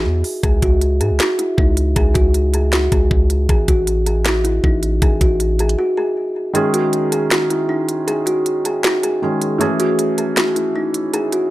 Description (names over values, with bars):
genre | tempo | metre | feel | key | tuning
hip hop, trap | 157 BPM | 4/4 | half-time | C# minor | A4 = 440 Hz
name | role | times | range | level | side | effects
kalimba | melody | 0.0-11.5 s | D#4 to G#4 | -18 LUFS | equal | ping-pong delay
long sustained 808-style bass | bass | 0.0-5.8 s | A1 to G#2 | -17 LUFS | equal | none
trap drum kit | drums | 0.2-11.4 s | finger snaps, hi-hat, kick drum, snare drum | -18 LUFS | equal | none
felt-muted upright piano | accompaniment | 6.5-11.5 s | D#3 to G#4 | -21 LUFS | right 1 dB | none
room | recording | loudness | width
digital ambience | none | -14 LUFS | side -16 dB against mid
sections
0.0-11.5 A section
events
break 5.8-6.5; kick muted 6.5-11.5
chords
0.4 C#5; 3.5 F#madd9/A; 6.5 C#sus2; 9.6 Amaj7